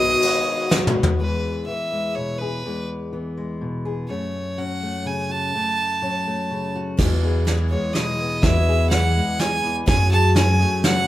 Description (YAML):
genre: indie folk with a building arrangement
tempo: 124 BPM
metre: 3/4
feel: straight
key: E major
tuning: A4 = 440 Hz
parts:
  - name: bright fiddle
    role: melody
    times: 0.0-11.1 s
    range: B4 to A5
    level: -23 LUFS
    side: right 1 dB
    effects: none
  - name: picked twelve-string acoustic guitar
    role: accompaniment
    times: 0.0-1.2, 7.0-11.1 s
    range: E2 to G#4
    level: -26 LUFS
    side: left 3 dB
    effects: none
  - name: soft brush drum kit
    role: drums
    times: 0.2-1.1, 7.0-11.0 s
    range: crash cymbal, hi-hat, kick drum, ride cymbal, snare drum, toms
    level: -21 LUFS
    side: equal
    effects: none
  - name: fingerpicked steel-string acoustic guitar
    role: accompaniment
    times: 1.2-11.1 s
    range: E2 to G#4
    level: -27 LUFS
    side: left 2 dB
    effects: none
  - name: fingered electric bass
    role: bass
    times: 7.0-10.6 s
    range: E2 to F#2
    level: -20 LUFS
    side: right 1 dB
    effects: none
room: light reverb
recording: band playing live in one room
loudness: -19 LUFS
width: side -14 dB against mid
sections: 0.0-1.2 A section; 1.2-7.0 B section; 7.0-11.1 C section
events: drum fill 0.7-1.2, 7.0-11.1; build-up 7.0-11.1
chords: 0.0 B6; 1.2 E; 4.1 F#m; 7.0 E; 9.9 F#madd9